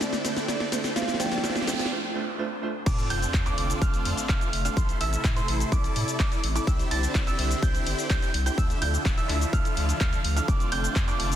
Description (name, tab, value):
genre	EDM, festival progressive house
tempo	126 BPM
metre	4/4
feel	straight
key	F major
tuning	A4 = 435 Hz
part	marimba with soft mallets	melody	0.0-1.9 s	D5 to G5	-36 LUFS	right 3 dB	dub echo
part	lush unison pad	sustained chords	0.0-11.4 s	C3 to F4	-36 LUFS	left 1 dB	chorus, phaser, sidechain pumping
part	big supersaw lead	riff	0.0-11.4 s	C4 to A5	-32 LUFS	right 1 dB	phaser, sidechain pumping, dub echo
part	saturated sub bass	bass	0.0-11.4 s	D1 to A2	-29 LUFS	equal	sidechain pumping, high-pass filter
part	big-room dance drum kit	drums	0.0-11.4 s	cabasa, crash cymbal, handclaps, hi-hat, snare drum	-31 LUFS	left 1 dB	studio reverb
part	riser, noise sweep and sub drop	sound effects	0.0-4.8 s	none	-36 LUFS	right 1 dB	none
part	warm concert grand piano	accompaniment	0.2-2.7 s	A3 to C5	-33 LUFS	right 4 dB	sidechain pumping, dub echo
part	dark grand piano	arpeggios	2.9-11.4 s	C6 to A6	-32 LUFS	right 5 dB	sidechain pumping, dub echo
part	electronic kick drum	drums	2.9-11.1 s	none	-25 LUFS	equal	studio reverb
room	light reverb, digital ambience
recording	dense, heavily limited modern master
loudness	-23 LUFS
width	side -10 dB against mid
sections	0.0-2.9 A section; 2.9-11.4 B section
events	build-up 0.0-2.9; drum fill 0.0-1.9; filter sweep on analog synth pad 0.0-2.9; noise sweep 1.0-2.9; break 1.9-2.9; drop 2.9-11.4; impact 2.9-4.8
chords	0.0 Cadd9; 1.0 Dmadd9; 2.9 F6; 4.8 Am; 6.7 Cadd9; 8.6 Dmadd9; 10.5 F6